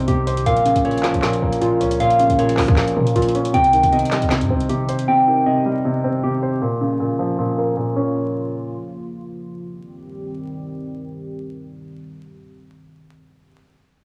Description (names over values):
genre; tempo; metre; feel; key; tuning
hip hop, trap; 156 BPM; 4/4; half-time; C phrygian; A4 = 440 Hz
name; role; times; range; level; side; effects
dark baby grand piano; accompaniment; 0.0-8.9 s; Bb2 to C5; -22 LUFS; equal; low-pass filter, cassette tape
dark analog pad; sustained chords; 0.1-13.5 s; Db3 to G4; -34 LUFS; equal; chorus, low-pass filter, cassette tape
mellow electric guitar; arpeggios; 0.0-6.6 s; F4 to G5; -22 LUFS; equal; low-pass filter, cassette tape, analog delay
hard-hitting 808-style bass; bass; 0.0-4.9 s; Bb1 to Bb2; -26 LUFS; equal; none
trap drum kit; drums; 0.1-5.1 s; handclaps, hi-hat, kick drum, snare drum; -26 LUFS; equal; cassette tape
room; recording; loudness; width
moderate spring reverb, RT60 1.5 s; home recording on cassette, vinyl crackle; -18 LUFS; mono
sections
0.0-3.5 A section; 3.5-9.7 B section; 9.7-12.8 C section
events
filter sweep 3.5-9.7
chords
0.5 Bbm; 3.5 Cm; 6.6 Bbm; 9.7 Cm